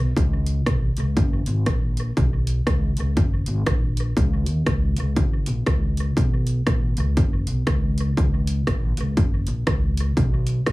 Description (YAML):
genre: ska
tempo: 120 BPM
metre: 4/4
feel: swing 60% on 8ths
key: F# major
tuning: A4 = 442 Hz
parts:
  - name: upright bass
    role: bass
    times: 0.0-10.7 s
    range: F#1 to D#2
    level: -22 LUFS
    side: equal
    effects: none
  - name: techno drum kit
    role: drums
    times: 0.2-10.7 s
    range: hi-hat, kick drum, rim click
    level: -22 LUFS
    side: equal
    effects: none
room: little or no reverb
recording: heavily compressed radio sound, multiband compression, small room ambience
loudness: -19 LUFS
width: side -20 dB against mid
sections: 0.0-10.7 A section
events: none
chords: none